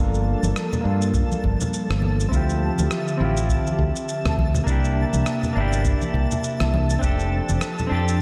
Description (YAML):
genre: sunset chillout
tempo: 102 BPM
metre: 4/4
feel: swing 58% on 16ths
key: unclear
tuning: A4 = 441 Hz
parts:
  - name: semi-hollow electric guitar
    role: accompaniment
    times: 0.0-8.2 s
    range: Bb3 to A4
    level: -31 LUFS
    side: equal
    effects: low-pass filter, delay
  - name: airy breathy pad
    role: sustained chords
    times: 0.0-8.2 s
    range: C3 to E5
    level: -29 LUFS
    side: equal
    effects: chorus
  - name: modern bright fingered electric bass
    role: bass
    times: 0.0-8.2 s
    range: F1 to G2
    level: -24 LUFS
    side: equal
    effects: none
  - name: twinkling granular texture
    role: texture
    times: 0.2-8.2 s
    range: A5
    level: -38 LUFS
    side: equal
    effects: built-in reverb, analog chorus
  - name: electronic shaker and rim click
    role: drums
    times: 0.1-8.2 s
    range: none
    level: -36 LUFS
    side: equal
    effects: none
  - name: congas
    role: percussion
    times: 0.4-7.9 s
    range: none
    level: -32 LUFS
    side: equal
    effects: none
  - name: electronic kick drum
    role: drums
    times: 1.1-7.2 s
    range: none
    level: -26 LUFS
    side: equal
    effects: none
room: moderate lush hall reverb, RT60 2.6 s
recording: dreamy mix soaked in reverb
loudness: -22 LUFS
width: mono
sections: 0.0-8.2 A section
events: filter sweep on clean electric guitar 0.0-8.2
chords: 0.0 Gm9; 2.3 Dm11; 4.7 C9; 7.0 F6